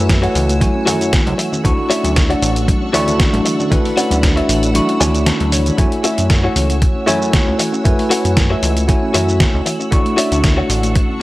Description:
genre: nu-disco, nu disco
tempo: 116 BPM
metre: 4/4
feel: swing 54% on 16ths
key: F# minor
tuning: A4 = 438 Hz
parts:
  - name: bell-like tine electric piano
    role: accompaniment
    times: 0.0-11.2 s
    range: A3 to C#6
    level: -18 LUFS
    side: equal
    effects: fast stereo tremolo, analog delay
  - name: string machine, full ensemble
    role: sustained chords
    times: 0.0-11.2 s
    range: D4 to E6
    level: -26 LUFS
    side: equal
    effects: ensemble chorus, sidechain pumping
  - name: soft round pluck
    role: arpeggios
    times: 0.0-11.2 s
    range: E3 to E4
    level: -26 LUFS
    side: left 1 dB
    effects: none
  - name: direct-recorded clean electric guitar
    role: riff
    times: 0.0-10.9 s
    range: F#4 to A5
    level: -21 LUFS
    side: left 2 dB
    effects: lush chorus
  - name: chorused synth bass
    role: bass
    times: 0.0-11.0 s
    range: A1 to F#2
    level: -18 LUFS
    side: equal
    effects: none
  - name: dusty soul sampler-style drum kit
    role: drums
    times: 0.1-11.1 s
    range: hi-hat, shaker, snare drum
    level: -20 LUFS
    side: equal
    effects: none
  - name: electronic kick drum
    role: drums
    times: 0.1-11.1 s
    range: none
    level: -16 LUFS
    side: equal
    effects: none
  - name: congas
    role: percussion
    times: 0.6-5.8 s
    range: none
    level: -26 LUFS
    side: right 1 dB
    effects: none
room: digital ambience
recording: dry, gritty hardware recording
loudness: -12 LUFS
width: side -18 dB against mid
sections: 0.0-5.8 A section; 5.8-11.2 A section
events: drop 0.0-5.8, 5.8-11.2; kick drops out 4.8-5.8; clean electric guitar fill 4.8-5.8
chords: 0.0 F#m7; 1.6 Dmaj9; 5.8 F#m7; 9.9 Dmaj9

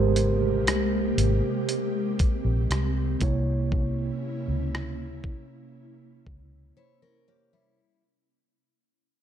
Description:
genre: contemporary R&B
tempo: 59 BPM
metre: 4/4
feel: straight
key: unclear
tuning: A4 = 439 Hz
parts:
  - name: mellow tine electric piano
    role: accompaniment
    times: 0.0-8.0 s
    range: C3 to E5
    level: -29 LUFS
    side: right 4 dB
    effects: slow stereo tremolo
  - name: ethereal airy pad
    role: sustained chords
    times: 0.0-7.7 s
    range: C3 to G4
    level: -31 LUFS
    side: left 1 dB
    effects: ensemble chorus, built-in reverb, sidechain pumping
  - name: vintage muted fingered electric bass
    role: bass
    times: 0.0-6.7 s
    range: Ab1 to Db2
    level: -26 LUFS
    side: equal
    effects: none
  - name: dusty soul sampler-style drum kit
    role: drums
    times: 0.2-6.5 s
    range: hi-hat, kick drum, rim click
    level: -27 LUFS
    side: equal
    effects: none
  - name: picked steel-string acoustic guitar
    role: arpeggios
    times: 6.8-8.0 s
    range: G3 to Db5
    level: -68 LUFS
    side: left 10 dB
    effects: none
room: light reverb, digital ambience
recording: dark, warm production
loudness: -23 LUFS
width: side -9 dB against mid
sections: 0.0-7.8 A section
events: fade-out 0.0-7.8; break 6.8-7.8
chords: 0.0 Abmaj9; 3.2 C7b9

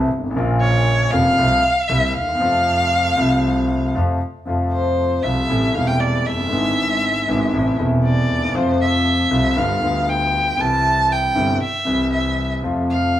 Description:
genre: tango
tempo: 117 BPM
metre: 4/4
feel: rubato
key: F major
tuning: A4 = 440 Hz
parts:
  - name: warm concert grand piano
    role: accompaniment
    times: 0.0-13.2 s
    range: E1 to F4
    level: -20 LUFS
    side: left 1 dB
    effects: none
  - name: clear double bass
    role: bass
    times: 0.0-13.2 s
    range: E1 to F2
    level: -23 LUFS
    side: right 2 dB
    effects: none
  - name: warm violin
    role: second line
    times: 0.6-13.2 s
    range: C5 to A5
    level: -19 LUFS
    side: equal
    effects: none
room: moderate large studio reverb, RT60 1.0 s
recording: band playing live in one room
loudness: -16 LUFS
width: side -12 dB against mid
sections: 0.0-4.5 A section; 4.5-13.2 A section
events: violin solo 0.0-4.5, 4.5-13.2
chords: 0.4 Bbm; 1.4 F/C; 1.9 C7; 2.4 F; 5.5 Am7; 6.5 E7/G#; 7.5 Am; 8.5 F; 9.6 G7; 10.6 C; 12.6 F

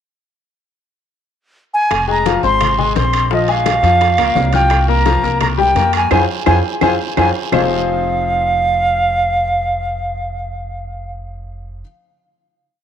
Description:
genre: latin, salsa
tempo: 171 BPM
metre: 4/4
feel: straight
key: F minor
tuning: A4 = 444 Hz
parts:
  - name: mellow silver concert flute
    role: melody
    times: 1.7-11.1 s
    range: Eb5 to C6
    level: -16 LUFS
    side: right 1 dB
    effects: none
  - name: upright bass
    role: bass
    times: 1.9-11.8 s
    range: F1 to F2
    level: -20 LUFS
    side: right 1 dB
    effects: none
  - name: bongos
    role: percussion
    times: 1.9-7.6 s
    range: none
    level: -26 LUFS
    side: left 11 dB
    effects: none
  - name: claves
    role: percussion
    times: 1.9-7.6 s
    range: none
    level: -28 LUFS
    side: right 17 dB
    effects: none
  - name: congas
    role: percussion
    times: 1.9-7.6 s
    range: none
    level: -26 LUFS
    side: left 9 dB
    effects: none
  - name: guiro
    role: percussion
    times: 1.9-7.6 s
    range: none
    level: -32 LUFS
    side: right 15 dB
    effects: none
  - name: timbales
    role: percussion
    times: 1.9-7.6 s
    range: none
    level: -24 LUFS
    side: right 13 dB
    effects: none
  - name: bright grand piano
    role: accompaniment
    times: 2.1-11.8 s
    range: F3 to F6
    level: -19 LUFS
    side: left 9 dB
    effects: none
room: moderate plate reverb, RT60 2.7 s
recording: 1960s-style stereo with parts hard left and right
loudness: -12 LUFS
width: side -9 dB against mid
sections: 0.5-1.9 pickup bar; 1.9-7.5 A section; 7.5-10.3 final chord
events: band accent 6.1-7.5; drum fill 6.8-7.5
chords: 0.5 N.C.; 1.9 Fm; 3.3 Bb7(no3); 4.7 C7sus4; 5.4 C5; 6.1 Fm; 7.5 Fm7

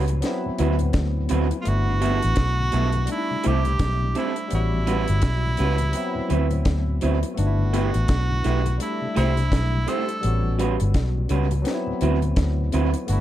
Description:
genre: lovers rock reggae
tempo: 84 BPM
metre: 4/4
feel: swing 60% on 16ths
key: unclear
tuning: A4 = 440 Hz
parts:
  - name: barky tine electric piano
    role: accompaniment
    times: 0.0-13.2 s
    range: F#3 to F#4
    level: -30 LUFS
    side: left 2 dB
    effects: analog chorus
  - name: electric guitar through a small old amp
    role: stabs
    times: 0.0-12.9 s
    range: F#3 to C5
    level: -29 LUFS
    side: right 6 dB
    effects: none
  - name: vintage muted fingered electric bass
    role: bass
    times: 0.0-13.2 s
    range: G1 to D2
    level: -22 LUFS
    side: equal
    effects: none
  - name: mellow tonewheel organ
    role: accompaniment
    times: 0.1-13.0 s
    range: D2 to F#4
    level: -34 LUFS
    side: left 5 dB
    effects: none
  - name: deep reggae drum kit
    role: drums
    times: 0.1-13.2 s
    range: hi-hat, kick drum, snare drum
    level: -27 LUFS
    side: equal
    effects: tape echo
  - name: edgy tenor saxophone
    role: melody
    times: 1.6-13.2 s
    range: E4 to A4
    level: -28 LUFS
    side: right 2 dB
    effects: tape echo
room: small room ambience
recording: dark, warm production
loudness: -20 LUFS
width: side -13 dB against mid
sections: 0.0-13.2 A section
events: none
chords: 0.2 D13; 1.7 G69; 3.1 C6; 4.5 A13; 5.9 D13; 7.4 G69; 8.8 C6; 10.2 A13; 11.7 D13

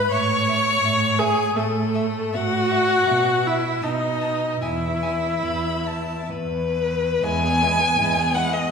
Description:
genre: classical, slow romantic movement for string quartet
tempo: 64-84 BPM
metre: 3/4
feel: rubato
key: E major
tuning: A4 = 441 Hz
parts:
  - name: clear violin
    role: melody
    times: 0.0-8.7 s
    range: E4 to C#6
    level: -28 LUFS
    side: left 8 dB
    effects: none
  - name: rich viola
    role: accompaniment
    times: 0.0-8.7 s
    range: G#3 to C#5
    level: -22 LUFS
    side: equal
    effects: none
  - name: rich cello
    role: bass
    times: 0.0-8.6 s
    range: E2 to B2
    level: -26 LUFS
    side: right 2 dB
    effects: none
  - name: rich violin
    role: second line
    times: 0.1-8.7 s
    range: B4 to B5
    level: -25 LUFS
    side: left 2 dB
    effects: none
room: wet recital hall reverb, RT60 1.7 s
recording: heard from further back in the room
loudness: -19 LUFS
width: side -6 dB against mid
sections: 0.0-7.2 A section; 7.2-8.7 B section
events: none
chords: 0.1 A; 3.1 E5/B; 3.8 B; 4.6 E5; 7.2 E

